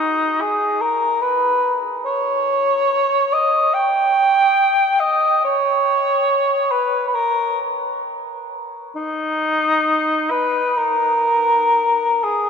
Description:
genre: classical, free, expressive piece for unaccompanied cor anglais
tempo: free time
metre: none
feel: none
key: unclear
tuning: A4 = 440 Hz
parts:
  - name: dark cor anglais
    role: solo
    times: 0.0-12.5 s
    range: D#4 to G5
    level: -16 LUFS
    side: equal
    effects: none
room: wet cathedral reverb, RT60 6.3 s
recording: none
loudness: -16 LUFS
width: side -6 dB against mid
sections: 0.0-12.5 A section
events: none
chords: none

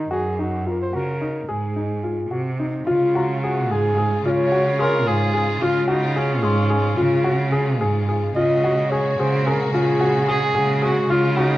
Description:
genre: contemporary instrumental, chamber music in an uneven meter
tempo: 219 BPM (eighths)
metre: 5/8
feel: straight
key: unclear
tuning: A4 = 440 Hz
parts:
  - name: warm flugelhorn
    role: melody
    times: 0.0-5.3, 8.4-10.8 s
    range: F4 to Eb5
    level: -24 LUFS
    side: right 1 dB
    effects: none
  - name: dark grand piano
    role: arpeggios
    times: 0.0-11.6 s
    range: Eb4 to Ab4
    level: -23 LUFS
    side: left 2 dB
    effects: none
  - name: rich cello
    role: bass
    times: 0.0-11.6 s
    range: Gb2 to Db3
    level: -22 LUFS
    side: right 2 dB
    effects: none
  - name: rich studio string section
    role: sustained chords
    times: 2.9-11.6 s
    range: Bb2 to Gb4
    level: -28 LUFS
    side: left 1 dB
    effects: none
  - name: worn celesta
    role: texture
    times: 3.2-8.3, 11.1-11.6 s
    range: Bb5 to Db6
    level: -33 LUFS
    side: left 4 dB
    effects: none
  - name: dark viola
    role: second line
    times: 4.8-7.3, 10.3-11.6 s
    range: Db4 to Bb4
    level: -23 LUFS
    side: right 1 dB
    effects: none
room: wet recital hall reverb, RT60 1.3 s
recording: worn, warbling old tape, cassette tape, warbly pitch drift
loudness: -18 LUFS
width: side -15 dB against mid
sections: 0.0-2.9 A section; 2.9-11.6 B section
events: none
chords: 0.1 Gb; 1.5 Ab; 2.9 Db; 8.4 Gbadd9

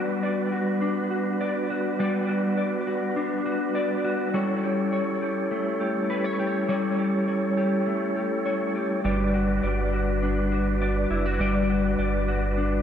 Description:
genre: dream pop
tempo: 102 BPM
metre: 4/4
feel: straight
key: G lydian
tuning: A4 = 441 Hz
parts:
  - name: percussive tonewheel organ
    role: sustained chords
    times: 0.0-12.8 s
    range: G3 to D5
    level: -27 LUFS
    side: right 1 dB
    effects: fast rotary speaker
  - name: mellow electric guitar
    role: arpeggios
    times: 0.0-12.8 s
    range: G3 to D5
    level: -26 LUFS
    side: left 2 dB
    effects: ensemble chorus, tape echo
  - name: warm sub bass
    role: bass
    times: 9.0-12.8 s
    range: F#1 to G1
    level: -27 LUFS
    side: right 1 dB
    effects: none
room: wet plate reverb, RT60 3.6 s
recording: dreamy mix soaked in reverb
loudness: -23 LUFS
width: side -9 dB against mid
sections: 0.0-12.8 A section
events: none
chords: 0.0 Gmaj7; 4.3 A7/G; 9.0 Gmaj7

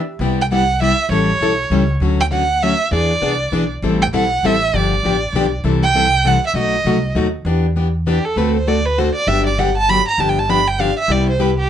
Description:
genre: acoustic string swing (jazz manouche)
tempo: 198 BPM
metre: 3/4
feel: swing 60% on 8ths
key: unclear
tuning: A4 = 440 Hz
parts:
  - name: picked plugged-in steel-string acoustic guitar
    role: accompaniment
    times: 0.2-11.5 s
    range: B2 to A4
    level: -18 LUFS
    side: left 3 dB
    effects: none
  - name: upright bass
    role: bass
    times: 0.2-11.7 s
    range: G1 to E2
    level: -20 LUFS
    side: equal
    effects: none
  - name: warm violin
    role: melody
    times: 0.4-11.7 s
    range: G4 to B5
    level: -18 LUFS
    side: right 3 dB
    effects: none
room: light reverb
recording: nothing above 10.3 kHz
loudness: -14 LUFS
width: side -9 dB against mid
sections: 0.2-7.5 A section; 7.5-11.7 B section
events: break 0.0; violin solo 7.5-11.7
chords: 0.2 Cmaj7; 1.1 A7; 2.0 Dmaj7; 2.9 E7; 3.8 Am7; 4.7 G7; 5.6 C6; 6.6 B7; 7.5 Em7; 8.4 D7; 9.3 Gmaj7; 10.2 G7; 11.1 Cmaj7

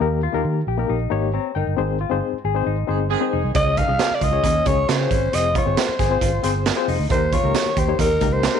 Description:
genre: uptempo 1960s-style soul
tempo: 135 BPM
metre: 4/4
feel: straight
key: unclear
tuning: A4 = 436 Hz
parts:
  - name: barky reed electric piano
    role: accompaniment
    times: 0.0-8.6 s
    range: Ab2 to Bb5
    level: -24 LUFS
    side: left 10 dB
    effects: overdrive, fast tremolo
  - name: fingered electric bass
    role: bass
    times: 0.0-8.5 s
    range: F1 to Eb3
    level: -23 LUFS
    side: right 2 dB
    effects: tube saturation
  - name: hollow-body jazz guitar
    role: riff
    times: 0.2-8.6 s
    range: C4 to Ab4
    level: -29 LUFS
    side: left 12 dB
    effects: none
  - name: mellow horn section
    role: second line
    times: 2.9-3.5 s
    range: Eb3 to Ab4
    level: -25 LUFS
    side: right 16 dB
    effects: none
  - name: raw garage drum kit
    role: drums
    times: 3.5-8.5 s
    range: hi-hat, kick drum, snare drum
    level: -23 LUFS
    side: right 5 dB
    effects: none
  - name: breathy alto saxophone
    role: melody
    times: 3.6-8.6 s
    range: Bb4 to F5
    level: -21 LUFS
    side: equal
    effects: slapback echo
room: moderate plate reverb, RT60 1.1 s, small room ambience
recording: 1960s-style stereo with parts hard left and right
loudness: -18 LUFS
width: side -7 dB against mid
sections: 0.0-8.6 A section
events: band accent 1.8-3.6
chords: 0.0 Eb; 1.8 Ab; 3.6 Db; 5.3 Fm; 7.1 Eb

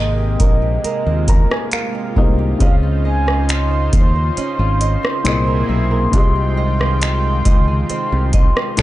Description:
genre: contemporary R&B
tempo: 68 BPM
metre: 4/4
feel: straight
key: F minor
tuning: A4 = 440 Hz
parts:
  - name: mellow horn-like synth lead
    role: melody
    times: 0.0-8.8 s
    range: Eb5 to C6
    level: -23 LUFS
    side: equal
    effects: chorus, tape echo
  - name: felt-muted upright piano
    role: accompaniment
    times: 0.0-8.8 s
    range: Ab2 to Bb5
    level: -25 LUFS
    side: left 4 dB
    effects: none
  - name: lush unison pad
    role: sustained chords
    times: 0.0-8.8 s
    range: C3 to G5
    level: -26 LUFS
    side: equal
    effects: chorus
  - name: flamenco guitar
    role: arpeggios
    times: 0.0-8.8 s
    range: Ab3 to E5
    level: -27 LUFS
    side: right 8 dB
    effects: none
  - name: fingered electric bass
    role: bass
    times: 0.0-8.8 s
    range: Ab1 to Eb2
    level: -17 LUFS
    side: equal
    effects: none
  - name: booming analog drum machine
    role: drums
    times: 0.4-8.8 s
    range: finger snaps, hi-hat, kick drum, rim click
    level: -16 LUFS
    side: equal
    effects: none
room: digital ambience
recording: dark, warm production, nothing above 10.4 kHz, faint mains hum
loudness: -14 LUFS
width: side -16 dB against mid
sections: 0.0-8.8 A section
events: felt piano fill 0.8-2.6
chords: 0.0 Abmaj9; 2.6 Dbmaj9; 5.3 C7alt; 6.1 Fm9/C

